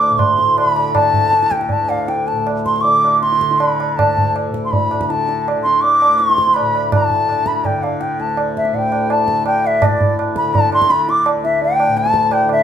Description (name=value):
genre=indian classical, Hindustani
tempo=157-171 BPM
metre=4/4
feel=straight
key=D raga kafi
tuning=A4 = 440 Hz
part: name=bright bansuri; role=melody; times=0.0-12.6 s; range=D5 to D6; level=-14 LUFS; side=equal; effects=none
part: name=tanpura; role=drone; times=0.0-12.6 s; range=D2 to D3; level=-23 LUFS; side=left 1 dB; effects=none
part: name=tabla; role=percussion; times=0.0-12.6 s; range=none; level=-20 LUFS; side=right 2 dB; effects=none
room=wet large studio reverb, RT60 0.9 s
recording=band playing live in one room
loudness=-13 LUFS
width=side -9 dB against mid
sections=0.0-9.8 A section; 9.8-12.6 B section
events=speeding up 0.0-12.6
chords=none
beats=0.19 0.57 | 0.95 1.33 1.71 2.09 | 2.47 2.84 3.22 3.59 | 3.97 4.34 4.71 5.08 | 5.45 5.82 6.19 6.56 | 6.92 7.29 7.66 8.02 | 8.38 8.74 9.11 9.47 | 9.82 10.18 10.54 10.90 | 11.25 11.61 11.96 12.31